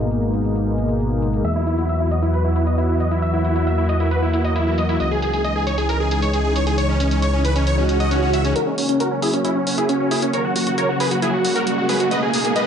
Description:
uplifting trance; 135 BPM; 4/4; straight; A4 = 439 Hz
fat analog bass; bass; 0.0-8.5 s; G#1 to E2; -21 LUFS; equal
electronic hi-hat; drums; 0.0-12.6 s; -29 LUFS; right 2 dB; low-pass filter on hats, low-pass filter on room
big supersaw lead; melody; 1.4-12.6 s; C#4 to E5; -22 LUFS; equal; low-pass filter, ping-pong delay
swell and riser; sound effects; 7.8-12.7 s; -26 LUFS; right 4 dB
plucky unison lead; second line; 8.6-12.6 s; C#4 to D#5; -24 LUFS; left 1 dB; lush chorus
light reverb; high-pass filter, low-pass filter, nothing above 10.4 kHz; -17 LUFS; side -8 dB against mid
0.0-8.6 A section; 8.6-12.7 B section
filter sweep 0.0-8.6; swell 7.8-8.6; build-up 8.6-12.7; riser 8.6-12.7; filter sweep on supersaw synth 8.6-12.7; filter sweep on digital synth lead 8.6-12.7
0.0 G#madd9; 1.4 Esus2; 5.0 C#madd9; 8.6 F#; 12.1 G#madd9

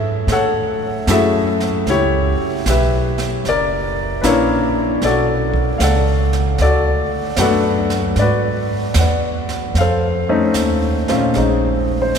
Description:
jazz ballad; 76 BPM; 4/4; swing 67% on 8ths; F# minor; A4 = 440 Hz
warm baby grand piano; accompaniment; 0.0-12.2 s; A#2 to F#5; -16 LUFS; left 2 dB
upright bass; bass; 0.0-12.2 s; F#1 to A2; -19 LUFS; right 1 dB
jazz brush drum kit; drums; 0.3-12.2 s; brushed snare drum, hi-hat, kick drum, snare drum; -27 LUFS; right 3 dB
wet cathedral reverb, RT60 7.2 s; recorded in a church or concert hall; -14 LUFS; side -7 dB against mid
0.0-11.4 A section
0.0 F#m9; 1.9 C#m7b5; 3.4 F#7b13; 5.0 Bm9; 8.2 G#m7b5; 9.7 F7b13; 11.4 Bbm11

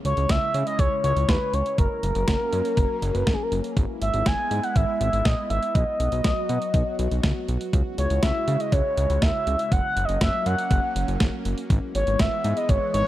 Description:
synth-pop; 121 BPM; 4/4; straight; A4 = 440 Hz
phased analog pad; sustained chords; 0.0-13.1 s; C#3 to F#4; -32 LUFS; equal; phaser, chorus
fat analog bass; bass; 0.0-13.0 s; F#1 to C#3; -25 LUFS; equal
expressive synth lead; melody; 0.1-13.1 s; G#4 to G#5; -25 LUFS; equal; chorus, analog delay
clean 12-bit digital drum machine; drums; 0.1-13.1 s; hi-hat, kick drum, snare drum; -24 LUFS; equal
light reverb; dark, warm production; -21 LUFS; side -14 dB against mid
0.0-13.1 A section
0.0 C#m; 1.8 F#; 3.8 E/G#; 5.8 B; 7.7 C#m; 9.7 F#; 11.7 E/G#

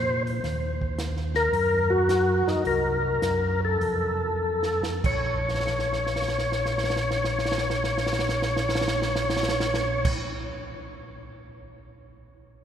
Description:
soul jazz organ trio; 94-111 BPM; 4/4; swing 69% on 8ths; Bb minor; A4 = 440 Hz
percussive tonewheel organ; melody; 0.0-10.1 s; Eb4 to Db5; -25 LUFS; left 1 dB; slow rotary speaker, overdrive, chorus vibrato
mellow tonewheel organ; bass; 0.0-10.1 s; Bb1 to Bb2; -29 LUFS; equal; chorus vibrato, slow rotary speaker
compact cocktail drum kit; drums; 0.3-11.6 s; crash cymbal, hi-hat, kick drum, snare drum; -31 LUFS; right 2 dB
wet cathedral reverb, RT60 5.0 s; recorded in a church or concert hall; -23 LUFS; side -9 dB against mid
0.0-5.0 A section; 5.0-10.1 B section
slowing down 0.4-5.0; drum fill 4.4-5.0, 5.4-10.0
0.4 Eb5; 1.5 Gb6; 2.6 F#dim/C; 3.8 F; 5.0 Bbm

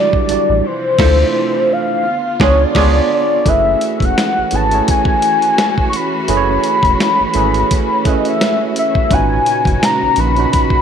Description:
R&B, neo-soul; 85 BPM; 4/4; swing 58% on 16ths; F# dorian from 3.5 s; A4 = 440 Hz
warm velvety synth lead; melody; 0.0-10.8 s; C5 to C#6; -15 LUFS; left 3 dB; chorus, slapback echo
tine electric piano; accompaniment; 0.0-10.8 s; A#2 to D5; -19 LUFS; right 12 dB; medium stereo tremolo
clear studio string section; sustained chords; 0.0-10.8 s; A#2 to F#4; -24 LUFS; equal
warm saxophone section; stabs; 0.0-2.9 s; F3 to B4; -26 LUFS; right 11 dB
dusty soul sampler-style drum kit; drums; 0.1-10.8 s; crash cymbal, hi-hat, kick drum, snare drum; -18 LUFS; left 1 dB
rubbery square bass; bass; 0.3-10.5 s; E1 to D2; -17 LUFS; left 1 dB; tube saturation
light reverb; 1960s-style stereo; -12 LUFS; side -8 dB against mid
0.0-3.5 A section; 3.5-10.8 B section
band accent 0.6-3.5
0.0 Em9; 0.6 Dm9; 2.0 C#7b9; 3.5 F#m11; 9.1 G#m11

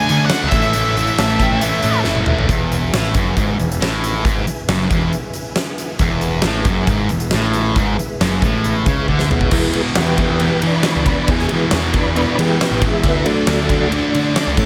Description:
classic rock; 137 BPM; 4/4; straight; E mixolydian; A4 = 439 Hz
octave-fuzz lead guitar; melody; 0.0-2.0 s; E5 to G#5; -22 LUFS; equal; distortion
tonewheel organ; sustained chords; 0.0-14.7 s; E3 to B4; -26 LUFS; equal; slow rotary speaker, chorus vibrato
sludgy distorted guitar; riff; 0.0-14.7 s; E2 to D4; -21 LUFS; equal; overdrive
fuzz picked electric bass; bass; 0.1-14.7 s; E1 to E3; -23 LUFS; equal; overdrive
huge arena drum kit; drums; 0.1-14.7 s; crash cymbal, hi-hat, kick drum, ride cymbal, snare drum, toms; -22 LUFS; equal
overdriven slide guitar; second line; 1.2-2.4 s; E5 to A5; -27 LUFS; equal
moderate studio reverb, RT60 0.7 s; -17 LUFS; mono
0.0-2.5 A section; 2.5-9.5 B section; 9.5-14.7 C section
drum fill 2.1-2.5, 9.1-9.5; tonewheel organ solo 9.5-14.7
0.0 D; 0.5 A; 2.5 E; 13.0 D

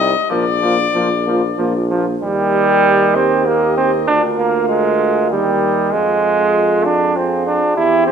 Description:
classical, brass quintet; 97 BPM; 3/4; uneven beats, rubato; Eb major; A4 = 445 Hz
mellow trumpet; melody; 0.0-8.1 s; C5 to F5; -23 LUFS; left 8 dB
mellow flugelhorn; second line; 0.0-8.1 s; Eb4 to Bb4; -21 LUFS; right 5 dB
brilliant trombone; accompaniment; 0.0-8.1 s; C3 to E4; -16 LUFS; right 3 dB
clear French horn; accompaniment; 0.0-8.1 s; G3 to G4; -22 LUFS; left 5 dB
mellow bass trombone; bass; 0.0-8.1 s; Bb1 to F2; -22 LUFS; right 1 dB
moderate recital hall reverb, RT60 1.5 s; minimal, uncompressed stereo recording; -13 LUFS; side -7 dB against mid
0.0-2.2 A section; 2.2-8.1 B section
0.3 Bb; 2.2 Eb; 4.1 Bb/D; 5.3 Eb; 5.9 Fm

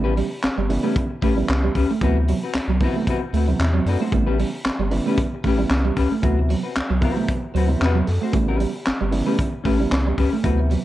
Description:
funk; 114 BPM; 4/4; straight; A4 = 439 Hz
semi-hollow electric guitar; accompaniment; 0.0-10.7 s; C4 to C5; -27 LUFS; left 6 dB
electric guitar at the edge of break-up; riff; 0.0-10.8 s; F#3 to A3; -26 LUFS; right 6 dB
dark upright piano; stabs; 0.0-10.8 s; C3 to C5; -26 LUFS; right 2 dB
round analog bass; bass; 0.0-10.8 s; G1 to F#2; -21 LUFS; equal
tight funk drum kit; drums; 0.2-10.8 s; handclaps, hi-hat, kick drum, snare drum; -25 LUFS; equal; vintage 12-bit sampler grit
light reverb, small room ambience; dark, warm production; -18 LUFS; side -14 dB against mid
0.0-10.8 A section
upright piano fill 7.3-8.3
0.0 A9; 2.0 D13; 4.1 A9; 6.2 D13; 8.3 A9

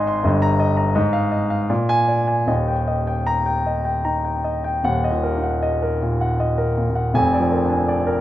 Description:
classical, romantic character piece for solo piano; 78 BPM; 3/4; uneven beats, rubato; Eb major, Eb minor from 4.8 s; A4 = 438 Hz
warm grand piano; solo; 0.0-8.2 s; Eb1 to C6; -18 LUFS; equal
light reverb; minimal, uncompressed stereo recording; -18 LUFS; side -13 dB against mid
0.0-4.8 A section; 4.8-8.2 B section
0.3 Eb/G; 1.0 Fm7/Ab; 1.7 Bb7; 2.5 Eb; 4.8 Ebm; 7.1 Bb7/F

